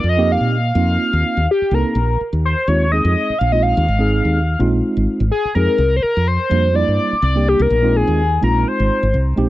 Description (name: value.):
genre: electric jazz fusion.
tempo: 125 BPM.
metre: 4/4.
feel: swing 55% on 16ths.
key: unclear.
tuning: A4 = 444 Hz.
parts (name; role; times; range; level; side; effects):
overdriven synth lead; melody; 0.0-9.2 s; G4 to F5; -18 LUFS; left 1 dB; phaser.
woody fretless electric bass; bass; 0.0-9.5 s; Ab1 to Bb2; -17 LUFS; equal; wide subtle chorus.
tine electric piano; accompaniment; 0.2-9.5 s; G3 to A4; -20 LUFS; right 2 dB; medium stereo tremolo.
room: little or no reverb.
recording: dry, close 1970s-style studio recording.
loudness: -14 LUFS.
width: side -16 dB against mid.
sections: 0.0-9.5 A section.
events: none.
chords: 0.0 F9sus4; 2.0 Bb9sus4; 5.8 C9sus4; 7.7 Bb9sus4.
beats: | 0.04 0.52 1.00 1.48 | 1.96 2.44 2.92 3.40 | 3.88 4.36 4.84 5.32 | 5.79 6.27 6.75 7.23 | 7.71 8.19 8.67 9.14.